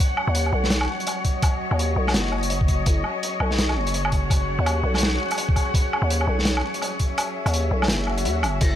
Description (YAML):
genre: half-time drum and bass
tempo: 167 BPM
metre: 4/4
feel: swing 59% on 16ths, half-time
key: unclear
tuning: A4 = 444 Hz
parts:
  - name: muted chamber cello section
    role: sustained chords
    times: 0.0-8.8 s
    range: F#3 to F#5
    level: -28 LUFS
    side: left 2 dB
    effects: sidechain pumping
  - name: metallic inharmonic drone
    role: texture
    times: 0.0-8.8 s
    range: F#3 to G#4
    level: -34 LUFS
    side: right 1 dB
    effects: chorus, built-in reverb
  - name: crunchy breakbeat drum kit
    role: drums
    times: 0.2-8.7 s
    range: crash cymbal, hi-hat, snare drum, woodblock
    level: -26 LUFS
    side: equal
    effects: none
  - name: growling 808-style bass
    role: bass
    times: 0.3-8.8 s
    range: F#1 to D#2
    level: -23 LUFS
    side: equal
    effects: none
  - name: electronic kick drum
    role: drums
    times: 1.2-8.7 s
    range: none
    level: -21 LUFS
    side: equal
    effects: none
  - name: swell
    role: sound effects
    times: 8.0-8.6 s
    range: none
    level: -33 LUFS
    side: left 4 dB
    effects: none
room: small room ambience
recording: none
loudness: -20 LUFS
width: side -11 dB against mid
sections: 0.0-8.8 A section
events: kick drops out 7.2-8.6; swell 8.0-8.6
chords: 0.0 F#5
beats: 0.35 0.71 1.07 | 1.43 1.78 2.14 2.50 | 2.86 3.22 3.58 3.94 | 4.30 4.66 5.02 5.38 | 5.74 6.10 6.46 6.82 | 7.17 7.53 7.89 8.25 | 8.61